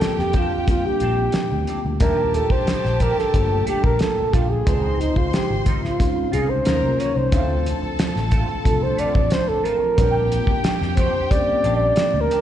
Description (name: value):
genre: lush 1970s-style soul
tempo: 90 BPM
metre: 4/4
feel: straight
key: Bb major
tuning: A4 = 440 Hz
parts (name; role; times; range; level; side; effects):
- breathy flugelhorn; melody; 0.0-12.4 s; Eb4 to D5; -22 LUFS; right 1 dB; slapback echo
- rich symphonic violin section; second line; 0.0-12.3 s; G4 to C6; -31 LUFS; equal; slapback echo
- mellow tine electric piano; accompaniment; 0.0-12.4 s; Bb2 to G4; -27 LUFS; left 5 dB; ensemble chorus, slapback echo
- mellow French horn section; sustained chords; 0.0-12.4 s; D3 to C5; -36 LUFS; right 2 dB; none
- semi-hollow electric guitar; riff; 0.0-12.4 s; F3 to G4; -33 LUFS; right 5 dB; wah, ensemble chorus, slapback echo
- fingered electric bass; bass; 0.0-12.3 s; G1 to F2; -23 LUFS; equal; none
- cloth-damped thuddy drum kit; drums; 0.0-12.4 s; hi-hat, kick drum, snare drum; -21 LUFS; equal; none
room: little or no reverb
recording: live gig heard through the venue's PA, recital hall reverb, nothing above 10.7 kHz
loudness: -17 LUFS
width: side -11 dB against mid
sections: 0.0-12.4 A section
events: flugelhorn solo 0.0-12.4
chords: 0.0 Bb69; 2.0 Ebmaj9#11; 4.7 Dbmaj9; 6.7 Ebm7; 7.3 Dm7; 10.0 Bb69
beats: 0.01 0.68 1.34 | 2.01 2.67 3.34 4.00 | 4.67 5.33 6.00 6.66 | 7.33 7.99 8.65 9.32 | 9.98 10.65 11.31 11.97